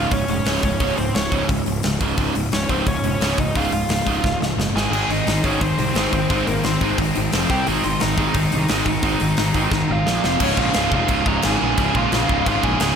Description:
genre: punk rock.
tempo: 175 BPM.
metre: 4/4.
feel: straight.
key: Db major.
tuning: A4 = 438 Hz.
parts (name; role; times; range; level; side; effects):
nasal lead guitar with a parked wah; melody; 0.0-13.0 s; Bb3 to Bb5; -25 LUFS; equal; overdrive, slapback echo.
biting overdriven guitar; riff; 0.0-13.0 s; Db2 to C4; -24 LUFS; right 9 dB; none.
distorted electric guitar; riff; 0.0-13.0 s; Db2 to C4; -26 LUFS; left 10 dB; distortion, slapback echo.
fuzz picked electric bass; bass; 0.0-12.9 s; Db1 to C2; -25 LUFS; equal; overdrive.
tight metal drum kit; drums; 0.1-12.9 s; crash cymbal, hi-hat, kick drum, snare drum; -24 LUFS; left 1 dB; none.
heavy high-gain guitar; riff; 4.9-13.0 s; Db2 to Ab4; -26 LUFS; equal; distortion, slapback echo.
room: moderate lush hall reverb, RT60 2.1 s.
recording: big arena sound.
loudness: -17 LUFS.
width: side -7 dB against mid.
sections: 0.0-10.4 A section; 10.4-13.0 B section.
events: drum fill 4.2-4.9, 9.7-10.4.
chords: 0.0 Db; 4.8 Ab5; 4.9 Ab; 7.3 F5; 7.5 C5; 7.7 Ab; 10.1 Bb5; 10.2 F5; 10.4 Db.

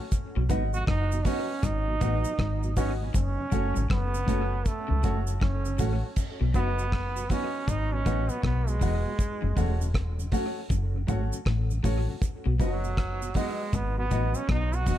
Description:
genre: roots reggae.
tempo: 79 BPM.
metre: 4/4.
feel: swing 63% on 16ths.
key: B mixolydian.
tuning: A4 = 439 Hz.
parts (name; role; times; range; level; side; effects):
bright upright piano; stabs; 0.0-15.0 s; F#4 to F#5; -39 LUFS; left 5 dB; none.
damped 70s drum kit; drums; 0.1-15.0 s; crash cymbal, hi-hat, kick drum, rim click; -29 LUFS; equal; none.
cabasa; percussion; 0.1-15.0 s; none; -44 LUFS; right 6 dB; none.
mellow tonewheel organ; accompaniment; 0.4-15.0 s; F#2 to F#4; -40 LUFS; equal; chorus vibrato, slow rotary speaker, analog delay.
electric guitar at the edge of break-up; riff; 0.4-15.0 s; E2 to C#3; -36 LUFS; left 7 dB; none.
deep dub fingered electric bass; bass; 0.4-15.0 s; E1 to C#2; -28 LUFS; equal; none.
mellow electric guitar; accompaniment; 0.5-15.0 s; F#3 to F#4; -36 LUFS; right 4 dB; dub echo.
brilliant trombone; melody; 0.7-15.0 s; F#3 to F#4; -33 LUFS; right 4 dB; dub echo.
room: little or no reverb.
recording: echo-heavy mix.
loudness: -25 LUFS.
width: side -12 dB against mid.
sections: 0.0-6.2 A section; 6.2-15.0 B section.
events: trombone solo 6.2-15.0.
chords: 0.1 B; 3.1 F#m; 6.2 B; 9.2 F#m; 12.2 B.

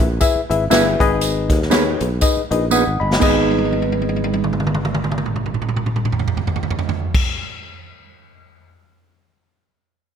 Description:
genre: uptempo 1960s-style soul.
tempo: 119 BPM.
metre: 4/4.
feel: swing 58% on 8ths.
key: G# minor.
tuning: A4 = 439 Hz.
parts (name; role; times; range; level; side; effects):
barky reed electric piano; accompaniment; 0.0-7.2 s; G#2 to D#6; -20 LUFS; left 6 dB; overdrive.
sustaining fretless electric bass; bass; 0.0-7.2 s; G1 to D#2; -23 LUFS; equal; none.
swinging big-band drum kit; drums; 0.0-8.7 s; crash cymbal, hi-hat, kick drum, snare drum, toms; -20 LUFS; right 1 dB; none.
tambourine; percussion; 0.2-7.2 s; none; -26 LUFS; right 4 dB; none.
mellow electric guitar; stabs; 0.7-7.2 s; B3 to B4; -21 LUFS; right 8 dB; spring reverb.
room: light reverb.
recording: none.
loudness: -16 LUFS.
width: side -8 dB against mid.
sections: 0.0-3.2 A section; 3.2-7.2 B section.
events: drum fill 2.7-3.2, 3.5-7.1.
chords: 0.0 E; 1.0 G#m.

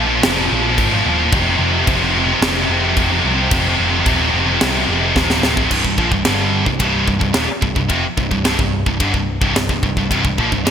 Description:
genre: heavy metal.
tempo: 109 BPM.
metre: 4/4.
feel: straight.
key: C minor.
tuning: A4 = 437 Hz.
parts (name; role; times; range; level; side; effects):
scooped high-gain guitar; riff; 0.0-10.7 s; C2 to G3; -16 LUFS; equal; distortion.
overdriven picked electric bass; bass; 0.0-10.7 s; C1 to C2; -22 LUFS; equal; none.
tight metal drum kit; drums; 0.2-10.7 s; crash cymbal, kick drum, ride cymbal, snare drum; -20 LUFS; equal; none.
room: moderate lush hall reverb, RT60 1.6 s, studio ambience.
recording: bright 1980s-style digital production.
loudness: -14 LUFS.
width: side -8 dB against mid.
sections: 0.0-5.7 A section; 5.7-10.7 B section.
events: half time 0.0-5.7; drum fill 5.2-5.7.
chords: 0.0 Bb5; 1.3 F5; 5.7 C5.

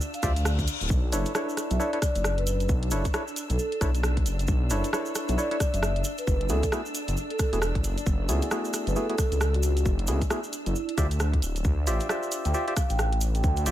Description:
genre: UK garage, two-step garage.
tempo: 134 BPM.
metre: 4/4.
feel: swing 60% on 16ths.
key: B minor.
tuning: A4 = 440 Hz.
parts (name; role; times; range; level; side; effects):
soft string machine; sustained chords; 0.0-13.7 s; D4 to E6; -38 LUFS; left 1 dB; ensemble chorus, sidechain pumping.
tube shaker; percussion; 0.0-13.7 s; none; -37 LUFS; right 2 dB; none.
reverse cymbal; sound effects; 0.2-0.9 s; none; -36 LUFS; left 6 dB; none.
vibraphone with soft mallets; melody; 0.1-13.7 s; E4 to G5; -33 LUFS; right 1 dB; ping-pong delay.
garage drum kit; drums; 0.1-13.7 s; hi-hat, rim click; -33 LUFS; right 1 dB; small room ambience.
percussive organ stab; stabs; 0.2-13.7 s; A3 to E5; -32 LUFS; equal; chorus, ping-pong delay.
dark detuned saw bass; bass; 0.2-13.7 s; D1 to D2; -26 LUFS; equal; none.
electronic kick drum; drums; 0.2-13.5 s; none; -26 LUFS; equal; small room ambience.
room: digital ambience.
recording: none.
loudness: -24 LUFS.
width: side -13 dB against mid.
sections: 0.0-13.7 A section.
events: reverse cymbal 0.2-0.9.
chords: 0.0 Dm11; 0.9 Bm11; 6.0 F#m11; 10.8 Dm11.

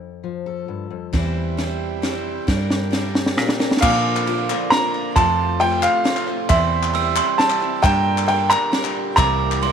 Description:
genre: indie folk with a building arrangement.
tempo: 134 BPM.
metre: 3/4.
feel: straight.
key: unclear.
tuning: A4 = 442 Hz.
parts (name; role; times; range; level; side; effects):
fingerpicked steel-string acoustic guitar; accompaniment; 0.0-1.1 s; F2 to A4; -30 LUFS; left 9 dB; none.
picked steel-string acoustic guitar; accompaniment; 1.1-9.7 s; Bb2 to C5; -28 LUFS; left 12 dB; none.
hand-pumped harmonium; sustained chords; 1.1-9.7 s; A2 to G4; -28 LUFS; right 12 dB; none.
fingered electric bass; bass; 1.1-9.7 s; C2 to Bb2; -23 LUFS; right 1 dB; none.
compact cocktail drum kit; drums; 1.1-9.7 s; crash cymbal, kick drum, ride cymbal, snare drum; -23 LUFS; equal; none.
warm upright piano; melody; 3.8-9.7 s; E5 to Bb5; -20 LUFS; equal; none.
glockenspiel with soft plastic mallets; second line; 3.8-9.7 s; Bb5 to E6; -24 LUFS; right 16 dB; none.
group handclap; percussion; 3.8-9.7 s; none; -28 LUFS; left 14 dB; none.
room: light reverb.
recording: 1960s-style stereo with parts hard left and right.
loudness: -17 LUFS.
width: side -7 dB against mid.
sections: 0.0-3.8 A section; 3.8-9.7 B section.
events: build-up 0.0-3.8; drum fill 1.1-3.8.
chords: 0.0 F; 1.1 C/E; 2.5 Gm; 3.8 Bb; 5.2 F; 6.5 C/E; 7.8 Gm; 9.2 C7.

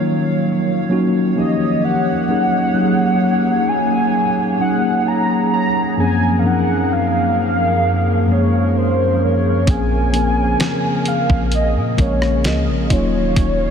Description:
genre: contemporary R&B.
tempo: 65 BPM.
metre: 4/4.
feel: straight.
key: Bb minor.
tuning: A4 = 440 Hz.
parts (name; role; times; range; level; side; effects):
mellow tine electric piano; accompaniment; 0.0-13.7 s; Gb2 to Bb4; -18 LUFS; left 1 dB; slow stereo tremolo.
hollow soft pad; sustained chords; 0.0-13.7 s; Gb2 to F5; -21 LUFS; right 1 dB; chorus.
warm velvety synth lead; melody; 1.4-13.7 s; C5 to Bb5; -20 LUFS; equal; chorus, diffuse ambient delay.
soft 808-style bass; bass; 9.7-13.7 s; Eb1 to Bb2; -20 LUFS; equal; none.
dusty soul sampler-style drum kit; drums; 9.7-13.6 s; hi-hat, kick drum, rim click, snare drum; -21 LUFS; equal; none.
room: wet huge ambient reverb, RT60 8.3 s.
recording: dreamy mix soaked in reverb.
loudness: -14 LUFS.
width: side -7 dB against mid.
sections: 0.0-13.7 A section.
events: none.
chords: 0.0 Ebm9; 1.4 Eb7; 2.3 Ab9sus4; 6.0 Gbmaj9#11; 9.7 Bbm9; 12.9 Ebm9.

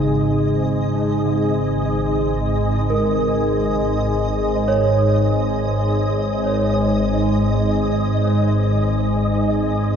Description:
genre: dark ambient drone.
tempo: free time.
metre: none.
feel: none.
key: unclear.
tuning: A4 = 438 Hz.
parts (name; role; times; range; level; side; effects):
gamelan-type bronze metallophone; arpeggios; 0.0-10.0 s; C#3 to C#5; -24 LUFS; right 3 dB; diffuse ambient delay.
organ-like drone; drone; 0.0-10.0 s; G#1 to G#2; -18 LUFS; equal; ensemble chorus, built-in reverb.
flickering grainy texture; texture; 0.0-10.0 s; D#5; -28 LUFS; equal; built-in reverb, ensemble chorus.
room: wet lush hall reverb, RT60 3.4 s.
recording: dreamy mix soaked in reverb.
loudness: -16 LUFS.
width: side -7 dB against mid.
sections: 0.0-10.0 A section.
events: fade-in on synth texture 0.0-10.0.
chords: 0.0 G#5.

